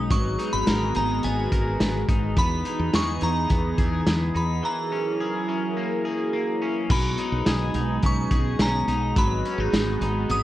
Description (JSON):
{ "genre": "dream pop", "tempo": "106 BPM", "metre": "4/4", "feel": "straight", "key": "B major", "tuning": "A4 = 441 Hz", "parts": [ { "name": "glassy synth bell", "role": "melody", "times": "0.0-10.4 s", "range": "G#5 to D#6", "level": "-30 LUFS", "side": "equal", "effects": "chorus, digital delay" }, { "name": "phased analog pad", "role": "sustained chords", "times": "0.0-10.4 s", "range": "E3 to A#4", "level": "-28 LUFS", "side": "right 1 dB", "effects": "phaser, chorus" }, { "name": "electric guitar at the edge of break-up", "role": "arpeggios", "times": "0.0-10.4 s", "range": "E3 to A#4", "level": "-30 LUFS", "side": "left 2 dB", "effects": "analog chorus, digital delay" }, { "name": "woody fretless electric bass", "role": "bass", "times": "0.0-10.4 s", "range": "G#1 to E2", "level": "-27 LUFS", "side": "equal", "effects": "none" }, { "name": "vintage drum kit", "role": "drums", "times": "0.1-10.4 s", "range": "crash cymbal, hi-hat, kick drum, snare drum, tambourine", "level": "-24 LUFS", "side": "equal", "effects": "none" } ], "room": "moderate recital hall reverb, RT60 1.6 s, small room ambience", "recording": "worn, warbling old tape, cassette tape, warbly pitch drift", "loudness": "-21 LUFS", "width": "side -14 dB against mid", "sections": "0.0-6.9 A section; 6.9-10.4 A section", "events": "break 4.6-6.9", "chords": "0.1 G#m9; 2.4 Emaj7; 4.6 F#9; 6.9 B69; 9.2 G#m7" }